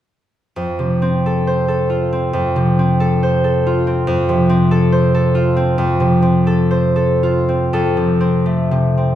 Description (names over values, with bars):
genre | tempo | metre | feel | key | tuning
classical, solo harp piece | 55-72 BPM | 4/4 | rubato | F major | A4 = 439 Hz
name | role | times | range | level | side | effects
concert harp | solo | 0.6-9.2 s | F2 to C5 | -13 LUFS | equal | none
room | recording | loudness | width
wet recital hall reverb, RT60 1.5 s | recorded in a church or concert hall | -13 LUFS | side -11 dB against mid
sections
0.6-7.8 A section; 7.8-9.2 B section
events
none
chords
0.6 F